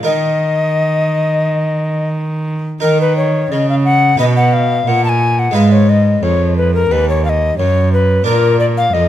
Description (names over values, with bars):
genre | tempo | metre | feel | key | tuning
classical, baroque-style sonata movement with continuo | 88 BPM | 4/4 | straight | Eb minor | A4 = 440 Hz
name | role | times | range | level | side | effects
harpsichord | accompaniment | 0.0-9.1 s | Eb2 to B4 | -21 LUFS | right 3 dB | none
rich cello | bass | 0.0-9.1 s | Eb2 to Eb3 | -14 LUFS | right 1 dB | none
alto recorder | melody | 0.1-9.1 s | Bb4 to A5 | -15 LUFS | left 4 dB | none
room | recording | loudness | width
light reverb | close, detailed microphones | -11 LUFS | side -12 dB against mid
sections
0.0-2.8 A section; 2.8-9.1 B section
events
none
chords
0.1 Eb5; 4.2 B; 5.6 Abm; 8.3 Bb